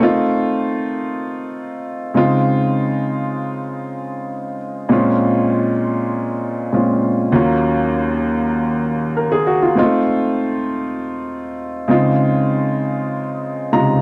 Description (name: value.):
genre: soul.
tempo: 99 BPM.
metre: 4/4.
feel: straight.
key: Db major.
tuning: A4 = 440 Hz.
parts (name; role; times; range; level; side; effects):
warm baby grand piano; solo; 0.0-14.0 s; Eb2 to Bb5; -18 LUFS; equal; none.
room: small room ambience.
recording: dry, close 1970s-style studio recording.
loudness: -19 LUFS.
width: mono.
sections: 0.0-14.0 A section.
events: grand piano fill 13.4-14.0.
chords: 0.0 F7; 2.2 Dbmaj7; 4.9 Bbm7; 7.3 Ebm9; 9.8 F7; 11.9 Dbmaj7.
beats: | 0.04 0.65 1.26 1.86 | 2.47 3.08 3.69 4.29 | 4.90 5.51 6.12 6.73 | 7.33 7.94 8.55 9.16 | 9.77 10.38 10.98 11.59 | 12.20 12.81 13.41.